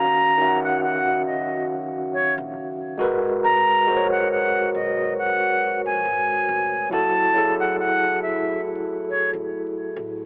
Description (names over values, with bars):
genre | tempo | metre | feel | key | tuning
lo-fi hip hop | 69 BPM | 4/4 | swing 56% on 16ths | unclear | A4 = 441 Hz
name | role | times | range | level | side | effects
reedy silver concert flute | melody | 0.0-9.3 s | Db5 to Bb5 | -23 LUFS | equal | none
tine electric piano | accompaniment | 0.0-10.3 s | Eb3 to Gb5 | -26 LUFS | equal | cassette tape
dark analog pad | sustained chords | 0.0-10.3 s | A2 to Gb4 | -38 LUFS | equal | none
upright bass | bass | 0.0-10.3 s | F1 to Eb2 | -47 LUFS | equal | none
room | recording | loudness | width
light reverb | home recording on cassette, vinyl crackle, telephone sound | -22 LUFS | mono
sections
0.0-10.3 A section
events
none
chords
0.0 Ebm9; 3.0 Abm9; 6.9 Gbm9